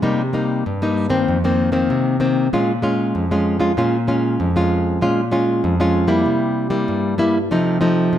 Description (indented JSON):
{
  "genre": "samba",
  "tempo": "96 BPM",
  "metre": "4/4",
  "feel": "straight",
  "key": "Bb minor",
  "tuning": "A4 = 441 Hz",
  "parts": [
    { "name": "nylon-string guitar", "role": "solo", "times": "0.0-8.2 s", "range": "F2 to F4", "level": "-16 LUFS", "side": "equal", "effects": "none" }
  ],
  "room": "moderate large studio reverb, RT60 1.2 s",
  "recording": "none",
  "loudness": "-16 LUFS",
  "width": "side -10 dB against mid",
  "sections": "0.0-5.0 A section; 5.0-8.2 B section",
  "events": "none",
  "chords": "0.0 Cm7; 1.3 F7sus4; 2.5 Bbm7; 6.3 C7; 7.5 F7/C"
}